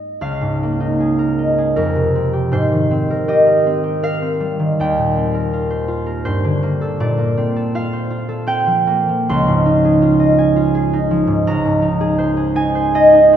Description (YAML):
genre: classical, solo harp piece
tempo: 69-84 BPM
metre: 3/4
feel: rubato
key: Ab major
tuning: A4 = 438 Hz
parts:
  - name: concert harp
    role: solo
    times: 0.0-13.4 s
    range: Db2 to C6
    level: -14 LUFS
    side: right 1 dB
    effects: none
room: wet church reverb, RT60 2.7 s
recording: recorded in a church or concert hall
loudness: -14 LUFS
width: side -9 dB against mid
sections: 0.2-13.4 A section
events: none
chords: 0.2 Db69; 1.8 Fmadd9; 2.5 Abmaj9; 4.8 Eb69; 6.3 Gmadd9; 7.0 Bbmaj9; 9.3 Dbadd9; 11.5 Abadd9/Db